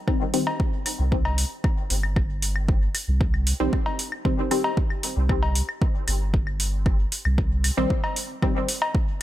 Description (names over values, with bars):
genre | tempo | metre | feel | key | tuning
dub techno | 115 BPM | 4/4 | straight | C minor | A4 = 440 Hz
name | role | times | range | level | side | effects
filtered dub chord stab | stabs | 0.1-0.4, 3.6-4.6, 7.8-8.5 s | Eb3 to C4 | -28 LUFS | left 1 dB | chorus, phaser, sidechain pumping, dub echo
electronic kick drum | drums | 0.1-9.1 s | none | -23 LUFS | equal | overdrive
claves and cowbell | percussion | 0.1-8.9 s | none | -31 LUFS | left 2 dB | sidechain pumping on perc, dub echo
electronic hi-hat | drums | 0.3-8.8 s | none | -27 LUFS | right 1 dB | overdrive
soft dub sub bass | bass | 1.0-7.9 s | G1 to C2 | -24 LUFS | equal | sidechain pumping
room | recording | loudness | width
little or no reverb | none | -21 LUFS | side -14 dB against mid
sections
0.0-9.2 A section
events
filter sweep on synth stab 0.0-9.2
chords
0.0 Cm